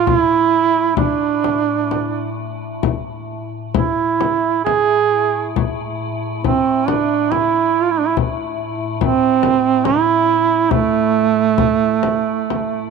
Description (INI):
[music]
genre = caucasian folk, Caucasian lament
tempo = 62-72 BPM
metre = 3/4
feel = rubato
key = A harmonic minor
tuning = A4 = 440 Hz
[part]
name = clear duduk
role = melody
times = 0.0-12.9 s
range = A3 to G#4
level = -15 LUFS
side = right 9 dB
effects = none
[part]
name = icy glass pad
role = drone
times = 0.0-12.9 s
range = A2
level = -26 LUFS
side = left 3 dB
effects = chorus, built-in reverb
[part]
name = frame drum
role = percussion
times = 0.1-12.7 s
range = none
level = -20 LUFS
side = left 9 dB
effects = none
[sound]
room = light reverb, small room ambience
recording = 1960s-style stereo with parts hard left and right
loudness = -15 LUFS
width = side -5 dB against mid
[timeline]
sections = 0.0-12.9 A section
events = none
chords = none